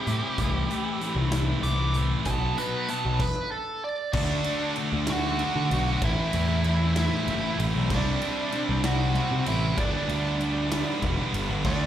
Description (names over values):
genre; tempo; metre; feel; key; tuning
quiet-loud alternative rock; 64 BPM (dotted quarters); 6/8; straight; unclear; A4 = 439 Hz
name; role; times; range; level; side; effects
nasal lead guitar with a parked wah; melody; 0.0-11.9 s; D4 to D6; -31 LUFS; right 2 dB; overdrive, slapback echo
heavy high-gain guitar; riff; 0.0-11.9 s; G2 to F#4; -32 LUFS; right 8 dB; distortion
thick fuzz guitar; riff; 0.0-11.9 s; G2 to D4; -32 LUFS; left 8 dB; distortion
fuzz picked electric bass; bass; 0.1-11.9 s; E1 to D3; -27 LUFS; equal; overdrive
huge arena drum kit; drums; 0.1-11.8 s; crash cymbal, hi-hat, kick drum, ride cymbal, snare drum; -33 LUFS; equal; none
scooped high-gain guitar; riff; 4.1-11.9 s; G2 to F#4; -35 LUFS; left 1 dB; distortion, slapback echo
room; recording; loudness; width
studio reverb; live gig heard through the venue's PA, club reverb; -24 LUFS; side -11 dB against mid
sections
0.0-4.2 A section; 4.2-11.9 B section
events
lead electric guitar solo 0.0-4.2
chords
0.4 Am/C; 2.3 B; 4.2 D6; 6.0 Am; 7.9 Cadd9; 9.8 G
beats
| 0.39 1.33 | 2.27 3.21 | 4.15 5.09 | 6.03 6.97 | 7.90 8.84 | 9.78 10.72 | 11.65